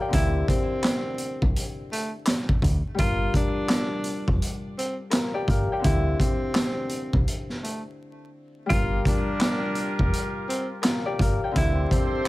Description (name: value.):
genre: hip hop, boom-bap hip-hop.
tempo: 84 BPM.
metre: 4/4.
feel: swing 62% on 16ths.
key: G dorian.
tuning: A4 = 441 Hz.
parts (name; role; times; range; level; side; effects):
Celtic harp; accompaniment; 0.0-12.3 s; D3 to G5; -31 LUFS; left 4 dB; cassette tape, high-pass filter, low-pass filter, plate reverb.
breathy tenor saxophone; melody; 0.1-12.3 s; A3 to F4; -30 LUFS; right 1 dB; high-pass filter, low-pass filter, plate reverb, digital delay.
overdriven picked electric bass; bass; 0.1-11.8 s; F1 to D2; -25 LUFS; equal; none.
raw garage drum kit; drums; 0.1-12.1 s; handclaps, hi-hat, kick drum, snare drum; -25 LUFS; equal; none.
mellow trumpet section; stabs; 8.7-12.3 s; F4 to C5; -33 LUFS; equal; high-pass filter, low-pass filter, digital delay.
room: light reverb.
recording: vinyl crackle.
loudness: -22 LUFS.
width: side -18 dB against mid.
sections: 0.0-8.7 A section; 8.7-12.3 B section.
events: break 8.0-8.7.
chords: 0.1 D9sus4; 3.0 Gm7; 5.8 D9sus4; 8.7 Gm7; 11.6 D9sus4.